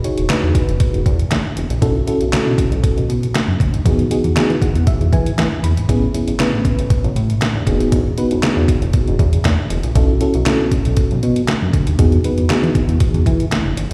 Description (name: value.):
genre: early-eighties boogie funk.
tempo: 118 BPM.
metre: 4/4.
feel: straight.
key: E major.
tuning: A4 = 438 Hz.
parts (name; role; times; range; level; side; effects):
FM electric piano with tremolo; accompaniment; 0.0-13.2 s; B3 to B5; -22 LUFS; equal; slapback echo.
detuned 8-bit digital drum machine; drums; 0.0-13.9 s; handclaps, hi-hat, kick drum, snare drum; -20 LUFS; equal; overdrive.
chorused synth bass; bass; 0.2-13.9 s; D#1 to E3; -20 LUFS; equal; none.
room: light reverb.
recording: live gig heard through the venue's PA, recital hall reverb.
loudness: -16 LUFS.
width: mono.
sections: 0.0-13.9 A section.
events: FM electric piano fill 4.4-5.9.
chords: 0.0 Emaj7; 1.8 B7sus4; 3.9 Emaj7; 5.9 Amaj9; 7.7 Emaj7; 10.0 B7sus4; 12.0 Emaj7.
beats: 0.29 0.80 1.31 | 1.82 2.33 2.84 3.35 | 3.85 4.36 4.87 5.38 | 5.89 6.40 6.91 7.41 | 7.92 8.43 8.94 9.45 | 9.96 10.46 10.97 11.48 | 11.99 12.50 13.01 13.52.